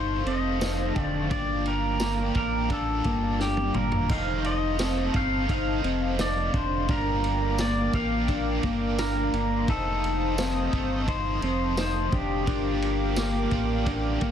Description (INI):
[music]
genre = dream pop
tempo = 86 BPM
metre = 4/4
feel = straight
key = G minor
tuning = A4 = 440 Hz
[part]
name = pedal steel guitar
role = melody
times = 0.0-14.3 s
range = G4 to F5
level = -30 LUFS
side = left 1 dB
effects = tape echo
[part]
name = biting overdriven guitar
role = accompaniment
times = 0.0-14.3 s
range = F2 to Eb4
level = -34 LUFS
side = right 5 dB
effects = tremolo, lush chorus
[part]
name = hollow soft pad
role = sustained chords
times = 0.0-14.3 s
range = Bb3 to Eb6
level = -35 LUFS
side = right 2 dB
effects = chorus
[part]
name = mellow electric guitar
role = arpeggios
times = 0.0-14.3 s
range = D3 to Eb4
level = -30 LUFS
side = left 3 dB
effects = analog chorus, tape echo
[part]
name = round analog bass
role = bass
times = 0.0-14.3 s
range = F1 to A1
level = -30 LUFS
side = equal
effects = none
[part]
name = vintage drum kit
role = drums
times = 0.3-14.3 s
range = kick drum, ride cymbal, snare drum, splash cymbal, tambourine, toms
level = -31 LUFS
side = equal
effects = soft clipping on kick
[part]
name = large celesta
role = texture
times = 1.0-5.1, 9.3-14.3 s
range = F5 to Eb6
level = -46 LUFS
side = right 8 dB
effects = none
[sound]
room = studio reverb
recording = dense, heavily limited modern master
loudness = -24 LUFS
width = side -9 dB against mid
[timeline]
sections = 0.0-14.3 A section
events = drum fill 3.4-4.1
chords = 0.0 F7; 1.3 Gm7; 4.1 F7; 6.9 Gm7; 9.7 F7; 12.5 Gm7